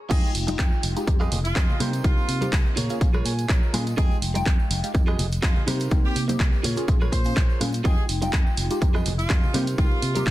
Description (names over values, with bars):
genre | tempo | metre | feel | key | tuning
filtered disco house | 124 BPM | 4/4 | swing 54% on 16ths | F minor | A4 = 441 Hz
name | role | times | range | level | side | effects
brilliant horn section | melody | 0.1-10.3 s | F4 to C5 | -34 LUFS | right 1 dB | sidechain pumping, dub echo
funky polysynth comp | accompaniment | 0.1-10.3 s | Ab3 to G5 | -30 LUFS | equal | chorus, phaser, sidechain pumping
direct-recorded clean electric guitar | riff | 0.1-10.3 s | Eb4 to Ab5 | -34 LUFS | right 6 dB | sidechain pumping
fingered electric bass | bass | 0.1-10.3 s | F1 to C3 | -27 LUFS | equal | sidechain pumping
electronic kick drum | drums | 0.1-10.3 s | none | -21 LUFS | equal | overdrive
punchy analog drum machine | drums | 0.1-10.3 s | crash cymbal, handclaps, hi-hat, rim click | -30 LUFS | right 1 dB | sidechain pumping on hats, high-pass filter on hats, high-pass filter on snare, sidechain pumping on cymbals, high-pass filter on cymbals, high-pass filter on room
tambourine and congas | percussion | 0.1-10.3 s | none | -35 LUFS | left 3 dB | sidechain pumping on perc
room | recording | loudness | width
digital ambience | dense, heavily limited modern master | -20 LUFS | side -16 dB against mid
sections
0.1-10.3 A section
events
drop 0.1-10.3; clean electric guitar fill 3.0-4.0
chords
0.1 Fm9; 1.8 Cm7; 2.8 Bbm7; 4.0 Fm9; 5.7 Cm7; 6.6 Bbm7; 7.8 Fm9; 9.5 Cm7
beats
| 0.11 0.59 1.08 1.56 | 2.04 2.53 3.01 3.50 | 3.98 4.46 4.95 5.43 | 5.91 6.40 6.88 7.37 | 7.85 8.33 8.82 9.30 | 9.79 10.27